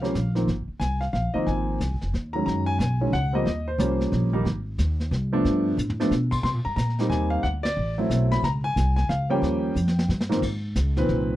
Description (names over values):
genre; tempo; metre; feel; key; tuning
jazz piano trio; 181 BPM; 3/4; swing 62% on 8ths; Ab major; A4 = 439 Hz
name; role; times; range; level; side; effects
warm concert grand piano; melody; 0.0-11.4 s; Ab2 to C6; -25 LUFS; equal; none
upright bass; bass; 0.0-11.4 s; F1 to C3; -25 LUFS; equal; none
vintage brush drum kit; drums; 0.0-11.4 s; brushed snare drum, crash cymbal, hi-hat, kick drum, ride cymbal, snare drum, toms; -32 LUFS; equal; none
room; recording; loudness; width
little or no reverb; dry, close 1970s-style studio recording; -22 LUFS; side -14 dB against mid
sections
0.0-2.5 A section; 2.5-10.4 B section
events
drum fill 5.8-6.1, 9.8-10.4; band accent 7.6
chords
0.5 Ab6; 2.5 B6; 3.5 Eb7; 4.5 Ab; 5.4 G7; 6.4 Cm7; 7.4 D9; 8.4 Dbmaj7; 9.4 Eb7; 10.4 Ab6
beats
0.14 | 0.47 0.81 1.14 | 1.47 1.80 2.13 | 2.46 2.80 3.13 | 3.46 3.79 4.12 | 4.45 4.79 5.12 | 5.45 5.78 6.11 | 6.44 6.77 7.11 | 7.44 7.77 8.10 | 8.43 8.76 9.09 | 9.43 9.76 10.09 | 10.42 10.75 11.08